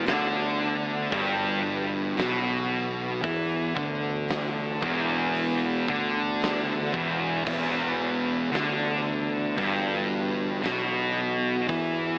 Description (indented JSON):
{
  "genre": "stoner and doom metal",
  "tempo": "57 BPM",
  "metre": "4/4",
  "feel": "straight",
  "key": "E minor",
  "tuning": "A4 = 440 Hz",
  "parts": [
    { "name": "deep rumbling drone", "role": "sustained chords", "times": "0.9-12.2 s", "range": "E3 to F#4", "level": "-37 LUFS", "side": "equal", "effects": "none" },
    { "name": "thick fuzz guitar", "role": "riff", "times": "0.0-12.2 s", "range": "E2 to E3", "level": "-28 LUFS", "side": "equal", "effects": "distortion" },
    { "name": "thick fuzz guitar", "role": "riff", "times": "0.0-12.2 s", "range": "E2 to E3", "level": "-30 LUFS", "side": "equal", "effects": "distortion" },
    { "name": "fuzz fingered electric bass", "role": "bass", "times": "0.0-12.2 s", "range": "E1 to E2", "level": "-32 LUFS", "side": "equal", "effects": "overdrive" },
    { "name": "big rock drum kit", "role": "drums", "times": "0.1-11.9 s", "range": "crash cymbal, hi-hat, kick drum, snare drum", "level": "-34 LUFS", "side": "equal", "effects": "none" }
  ],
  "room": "light reverb",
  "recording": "AM radio sound",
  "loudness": "-24 LUFS",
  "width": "side -34 dB against mid",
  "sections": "0.0-12.2 A section",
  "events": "none",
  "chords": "0.0 Em"
}